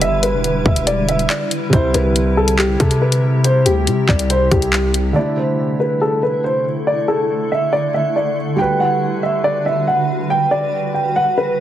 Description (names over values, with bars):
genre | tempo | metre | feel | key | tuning
hip hop, drill | 140 BPM | 4/4 | half-time | unclear | A4 = 439 Hz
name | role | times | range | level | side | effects
dark concert grand piano | melody | 0.0-11.6 s | G4 to G5 | -18 LUFS | equal | tape echo
dark concert grand piano | accompaniment | 0.0-11.6 s | C3 to B4 | -24 LUFS | right 2 dB | none
granular cloud pad | sustained chords | 0.0-11.6 s | C3 to B4 | -23 LUFS | equal | built-in reverb
hard-hitting 808-style bass | bass | 0.0-5.1 s | E1 to C3 | -18 LUFS | equal | none
drill drum kit | drums | 0.0-5.0 s | handclaps, hi-hat, kick drum | -18 LUFS | left 1 dB | none
room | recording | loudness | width
light reverb | heavily compressed radio sound | -14 LUFS | side -11 dB against mid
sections
0.0-5.2 A section; 5.2-11.6 B section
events
none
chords
0.0 Em7; 1.7 C; 5.2 Dsus2; 8.6 Gmaj7